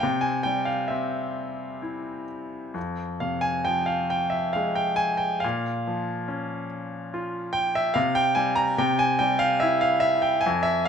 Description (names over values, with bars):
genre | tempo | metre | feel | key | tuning
classical, lyrical solo piano | 64-74 BPM | 3/4 | rubato | unclear | A4 = 440 Hz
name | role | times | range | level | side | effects
bright grand piano | solo | 0.0-10.9 s | F2 to Bb5 | -23 LUFS | equal | none
room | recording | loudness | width
moderate recital hall reverb, RT60 1.6 s | nothing above 10.4 kHz | -23 LUFS | side -7 dB against mid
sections
0.0-10.9 A section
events
none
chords
0.0 C; 2.8 Fm; 5.4 Bbm; 8.0 C5; 8.8 C